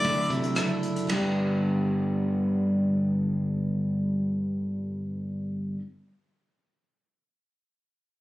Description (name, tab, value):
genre	folk rock and heartland rock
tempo	110 BPM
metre	4/4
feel	straight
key	G major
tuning	A4 = 440 Hz
part	picked steel-string acoustic guitar	accompaniment	0.0-5.8 s	G2 to G4	-35 LUFS	left 4 dB	none
part	electric guitar through a small old amp	riff	0.0-5.8 s	G2 to G4	-27 LUFS	right 1 dB	none
part	modern bright fingered electric bass	bass	0.0-5.7 s	F#1 to C3	-32 LUFS	left 1 dB	none
part	unplugged drum kit	drums	0.0-1.2 s	hi-hat, kick drum, ride cymbal, rim click	-34 LUFS	right 1 dB	none
room	light reverb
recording	recorded on a phone in the room, studio reverb, compression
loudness	-25 LUFS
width	side -17 dB against mid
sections	0.0-1.1 A section; 1.1-5.4 B section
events	slowing down 0.0-1.1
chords	0.0 Dadd9; 1.1 G